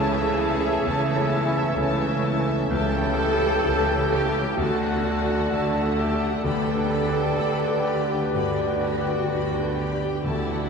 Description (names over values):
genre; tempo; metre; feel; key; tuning
classical; 64 BPM; 4/4; rubato; unclear; A4 = 440 Hz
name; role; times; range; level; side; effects
warm concert grand piano; melody; 0.0-10.7 s; C#2 to B4; -27 LUFS; left 2 dB; none
warm symphonic violin section; melody; 0.0-10.7 s; E5 to B5; -35 LUFS; left 3 dB; none
clear oboe; second line; 0.0-10.7 s; D5 to G5; -33 LUFS; right 1 dB; none
mellow clarinet; second line; 0.0-10.7 s; A4 to C#5; -35 LUFS; equal; none
mellow hollow silver concert flute; second line; 0.0-10.7 s; F#5 to A5; -35 LUFS; left 2 dB; none
warm symphonic violin section; second line; 0.0-10.7 s; E4 to F#5; -37 LUFS; left 3 dB; none
mellow bassoon; accompaniment; 0.0-10.7 s; D3 to E3; -33 LUFS; right 1 dB; none
rich symphonic viola section; accompaniment; 0.0-10.7 s; E4 to A4; -28 LUFS; right 1 dB; none
clear trombone section; sustained chords; 0.0-10.7 s; D3 to B3; -32 LUFS; right 3 dB; none
warm French horn section; sustained chords; 0.0-10.7 s; C#4 to G4; -33 LUFS; left 3 dB; none
rich studio double bass section; bass; 0.0-10.7 s; C#2 to D2; -31 LUFS; right 3 dB; none
rich symphonic cello section; bass; 0.0-10.7 s; C#3 to D3; -32 LUFS; right 3 dB; none
timpani; percussion; 6.5-10.7 s; D3; -34 LUFS; left 3 dB; none
room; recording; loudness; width
wet church reverb, RT60 2.8 s; lossy compression artefacts; -21 LUFS; side -5 dB against mid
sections
0.0-10.7 A section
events
none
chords
0.0 A/C#; 2.7 A7/C#; 4.6 D; 6.4 G/D